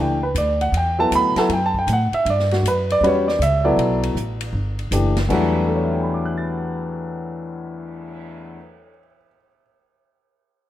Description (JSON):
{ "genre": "modal jazz", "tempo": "158 BPM", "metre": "4/4", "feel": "swing 65% on 8ths", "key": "E dorian", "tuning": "A4 = 444 Hz", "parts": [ { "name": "warm grand piano", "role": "accompaniment", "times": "0.0-9.6 s", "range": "E2 to A6", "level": "-19 LUFS", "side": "equal", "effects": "none" }, { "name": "upright bass", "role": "bass", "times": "0.0-8.5 s", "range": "F#1 to A2", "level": "-23 LUFS", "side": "equal", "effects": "none" }, { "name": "open jazz drum kit", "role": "drums", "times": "0.4-8.3 s", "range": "crash cymbal, cymbal swell, hi-hat, kick drum, ride cymbal, snare drum", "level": "-32 LUFS", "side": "equal", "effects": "none" } ], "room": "light reverb, small room reverb", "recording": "rough home demo mix", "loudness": "-17 LUFS", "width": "side -12 dB against mid", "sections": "0.0-5.3 A section; 5.3-8.4 B section", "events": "none", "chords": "0.0 Em11" }